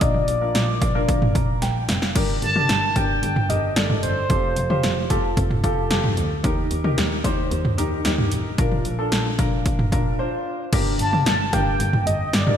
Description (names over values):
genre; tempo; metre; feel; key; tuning
synth-pop; 112 BPM; 4/4; straight; G minor; A4 = 441 Hz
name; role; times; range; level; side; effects
mellow horn-like synth lead; melody; 0.0-5.1, 11.0-12.6 s; C5 to A5; -24 LUFS; equal; chorus, digital delay
warm baby grand piano; accompaniment; 0.0-12.6 s; Bb3 to Bb5; -26 LUFS; left 1 dB; wide subtle chorus
clear double bass; bass; 0.0-12.5 s; F1 to Eb2; -25 LUFS; equal; none
punchy analog drum machine; drums; 0.0-12.6 s; cowbell, crash cymbal, hi-hat, kick drum, snare drum, toms; -22 LUFS; equal; overdrive, gated reverb
room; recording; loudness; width
moderate lush hall reverb, RT60 2.2 s; bright 1980s-style digital production; -19 LUFS; side -9 dB against mid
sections
0.0-2.2 A section; 2.2-10.7 B section; 10.7-12.6 A section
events
grand piano fill 1.1-2.2; drum fill 1.6-2.2; break 10.2-10.7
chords
0.0 Bb; 2.2 Gm; 4.3 Fadd9; 6.4 Eb; 8.6 Bb; 10.7 Gm